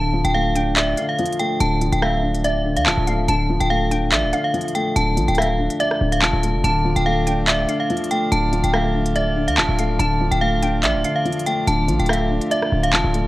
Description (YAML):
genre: hip hop, drill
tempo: 143 BPM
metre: 4/4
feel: half-time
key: D minor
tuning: A4 = 440 Hz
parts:
  - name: metallic FM bell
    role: melody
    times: 0.0-13.3 s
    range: E5 to A5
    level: -22 LUFS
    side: equal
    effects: chorus
  - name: glassy wavetable pluck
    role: second line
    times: 0.0-12.9 s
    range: D5 to A5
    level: -30 LUFS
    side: equal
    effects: chorus, tape echo
  - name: dark concert grand piano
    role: accompaniment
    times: 0.0-13.3 s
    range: D3 to D5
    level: -23 LUFS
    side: left 2 dB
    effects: none
  - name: hard-hitting 808-style bass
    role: bass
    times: 0.0-13.3 s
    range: D1 to D2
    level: -22 LUFS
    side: equal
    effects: none
  - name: drill drum kit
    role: drums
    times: 0.2-13.2 s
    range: handclaps, hi-hat, rim click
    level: -23 LUFS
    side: equal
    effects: none
  - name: chamber organ, principal chorus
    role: sustained chords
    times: 6.6-13.3 s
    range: D3 to D5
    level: -29 LUFS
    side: right 2 dB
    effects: none
room: little or no reverb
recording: worn, warbling old tape, cassette tape, warbly pitch drift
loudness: -17 LUFS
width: side -18 dB against mid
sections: 0.0-13.3 A section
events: none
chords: 0.0 Dm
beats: 0.35 0.77 1.19 | 1.60 2.02 2.44 2.86 | 3.28 3.70 4.12 4.54 | 4.96 5.38 5.80 6.22 | 6.64 7.06 7.48 7.90 | 8.32 8.74 9.16 9.58 | 10.00 10.42 10.84 11.26 | 11.67 12.09 12.51 12.93